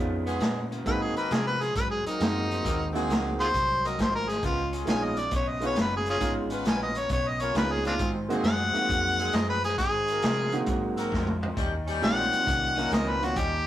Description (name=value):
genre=electric blues shuffle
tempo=134 BPM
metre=4/4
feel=swing 68% on 8ths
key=Ab mixolydian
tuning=A4 = 442 Hz
part: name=warm upright piano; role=accompaniment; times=0.0-13.4 s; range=F3 to G4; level=-31 LUFS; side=right 2 dB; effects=none
part: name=electric guitar through a small old amp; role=riff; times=0.0-13.7 s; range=Ab2 to Db4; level=-37 LUFS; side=left 2 dB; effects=none
part: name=vintage muted fingered electric bass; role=bass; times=0.0-13.7 s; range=Gb1 to C3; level=-34 LUFS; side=equal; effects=none
part: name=mellow horn section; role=stabs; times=0.3-13.6 s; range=G3 to Cb5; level=-36 LUFS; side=left 1 dB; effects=tape echo
part: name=vintage drum kit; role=drums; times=0.3-13.5 s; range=hi-hat, kick drum, snare drum, toms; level=-30 LUFS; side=equal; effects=none
part: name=warm harmonica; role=melody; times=0.9-13.7 s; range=C4 to Ab5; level=-27 LUFS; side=left 1 dB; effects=overdrive
room=moderate stone room reverb, RT60 1.0 s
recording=rough rehearsal-room recording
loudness=-24 LUFS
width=side -12 dB against mid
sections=0.0-13.7 A section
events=harmonica solo 0.0-13.7; drum fill 11.1-11.6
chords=0.0 Db7; 0.9 Ab7; 4.4 Db7; 8.0 Ab7; 11.6 Eb7